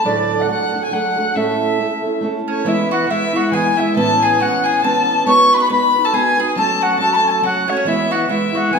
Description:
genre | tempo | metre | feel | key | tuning
celtic folk, Celtic waltz | 138 BPM | 3/4 | swing 57% on 8ths | E major | A4 = 440 Hz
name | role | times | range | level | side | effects
bright reedy wooden flute | melody | 0.0-8.8 s | C#5 to C#6 | -17 LUFS | equal | none
rich fiddle | second line | 0.0-8.8 s | C#5 to C#6 | -21 LUFS | left 4 dB | none
fingerpicked steel-string acoustic guitar | accompaniment | 0.0-8.8 s | D2 to B4 | -19 LUFS | right 2 dB | none
mandolin | second line | 2.5-8.8 s | C#4 to C#5 | -24 LUFS | right 4 dB | none
room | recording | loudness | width
wet recital hall reverb, RT60 1.5 s | recorded in a church or concert hall | -14 LUFS | side -5 dB against mid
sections
0.0-2.7 A section; 2.7-8.8 B section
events
none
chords
0.0 D; 1.4 A; 2.7 E; 4.0 Aadd9; 5.3 B; 6.6 F#m; 7.9 E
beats
| 0.05 0.49 0.92 | 1.36 1.79 2.23 | 2.67 3.10 3.54 | 3.97 4.40 4.84 | 5.27 5.70 6.14 | 6.57 7.00 7.43 | 7.87 8.30 8.73

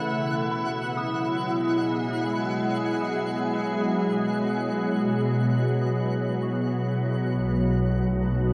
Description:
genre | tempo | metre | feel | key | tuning
ambient | 66 BPM | 4/4 | straight | unclear | A4 = 440 Hz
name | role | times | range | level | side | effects
soft additive organ-like pad | sustained chords | 0.0-8.5 s | B2 to G#4 | -26 LUFS | equal | ensemble chorus, built-in reverb
worn celesta | arpeggios | 0.0-7.8 s | B5 to D#6 | -42 LUFS | equal | none
twinkling granular texture | texture | 0.0-7.4 s | F#5 to F#6 | -38 LUFS | equal | built-in reverb
dark studio double bass section | bass | 7.3-8.5 s | B1 | -29 LUFS | equal | none
room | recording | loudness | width
wet huge ambient reverb, RT60 7.1 s | worn, warbling old tape, cassette tape, warbly pitch drift | -26 LUFS | mono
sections
0.0-7.3 A section; 7.3-8.5 B section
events
none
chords
0.1 Eadd9/B; 7.3 B7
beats
| 0.07 0.98 1.89 2.80 | 3.71 4.62 5.53 6.43 | 7.34 8.25

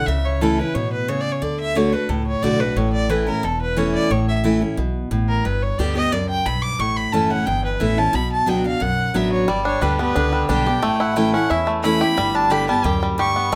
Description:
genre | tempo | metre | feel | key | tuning
bluegrass | 179 BPM | 4/4 | straight | unclear | A4 = 439 Hz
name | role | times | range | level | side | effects
clear fiddle | second line | 0.0-13.6 s | A4 to D6 | -25 LUFS | equal | none
picked steel-string acoustic guitar | accompaniment | 0.0-13.6 s | E2 to G4 | -24 LUFS | equal | none
upright bass | bass | 0.0-13.6 s | E1 to A2 | -27 LUFS | equal | none
bluegrass banjo | melody | 9.5-13.6 s | G3 to G4 | -23 LUFS | equal | slapback echo
room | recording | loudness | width
moderate small room reverb, RT60 0.6 s | none | -20 LUFS | mono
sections
0.0-13.6 A section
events
fiddle solo 0.0-13.6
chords
0.1 A/C#; 1.4 D; 2.8 A; 5.5 G; 6.8 A; 8.1 Bm; 9.5 G; 10.8 A; 12.2 G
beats
| 0.09 0.42 0.76 1.09 | 1.43 1.76 2.10 2.44 | 2.77 3.11 3.44 3.78 | 4.11 4.45 4.79 5.12 | 5.46 5.79 6.13 6.46 | 6.80 7.14 7.47 7.81 | 8.14 8.48 8.82 9.15 | 9.49 9.82 10.16 10.50 | 10.83 11.17 11.51 11.84 | 12.18 12.51 12.85 13.19 | 13.52

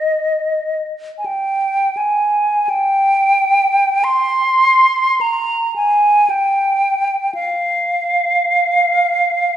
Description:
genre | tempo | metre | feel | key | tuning
classical, free, expressive piece for unaccompanied flute | 35-57 BPM | 4/4 | rubato | unclear | A4 = 440 Hz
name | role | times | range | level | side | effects
hollow concert flute | solo | 0.0-9.6 s | Eb5 to C6 | -13 LUFS | right 1 dB | none
room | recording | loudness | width
wet recital hall reverb, RT60 1.5 s | heard from further back in the room, nothing above 10.6 kHz | -13 LUFS | side -11 dB against mid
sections
0.0-2.7 A section; 2.7-9.6 B section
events
none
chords
none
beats
1.25 | 2.69 4.03 5.20 6.29 | 7.36 8.44 9.54

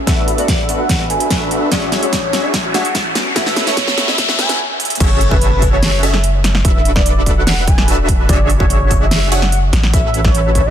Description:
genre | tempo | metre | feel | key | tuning
future bass | 146 BPM | 4/4 | half-time | A major | A4 = 440 Hz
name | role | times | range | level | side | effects
long sustained 808-style bass | bass | 0.0-10.7 s | E1 to A1 | -16 LUFS | equal | sidechain pumping, high-pass filter
riser | sound effects | 0.0-4.6 s | none | -21 LUFS | left 1 dB | none
warm velvety synth lead | melody | 0.1-10.7 s | B4 to G#5 | -21 LUFS | equal | chorus, sidechain pumping, digital delay
glassy digital keys | accompaniment | 0.1-4.6 s | G#3 to F#4 | -26 LUFS | left 5 dB | chorus, phaser, sidechain pumping, tape echo
supersaw stab | riff | 0.1-10.7 s | C#4 to E5 | -20 LUFS | right 1 dB | sidechain pumping, low-pass filter, tape echo
big-room dance drum kit | drums | 0.1-10.6 s | crash cymbal, hi-hat, snare drum | -19 LUFS | right 1 dB | small room ambience
electronic kick drum | drums | 0.1-10.6 s | none | -16 LUFS | equal | small room ambience
room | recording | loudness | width
little or no reverb | dense, heavily limited modern master, high-pass filter | -12 LUFS | side -10 dB against mid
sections
0.0-5.0 A section; 5.0-10.7 B section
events
build-up 0.0-5.0; drum fill 0.0-4.6, 4.8; riser 0.0-4.6; filter sweep on supersaw synth 0.0-5.0; filter sweep on soft synth lead 0.0-5.0; filter sweep 0.0-5.0; stop 4.6-5.0; drop 5.0-10.7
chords
0.1 E9sus4; 1.7 Dmaj9#11/F#; 3.2 A69; 5.0 F#m9; 6.6 E9sus4; 8.3 Dmaj9#11/F#; 9.7 A69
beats
| 0.07 0.48 0.90 1.31 | 1.72 2.13 2.54 2.95 | 3.36 3.77 4.18 4.59 | 5.00 5.42 5.83 6.24 | 6.65 7.06 7.47 7.88 | 8.29 8.70 9.11 9.53 | 9.94 10.35

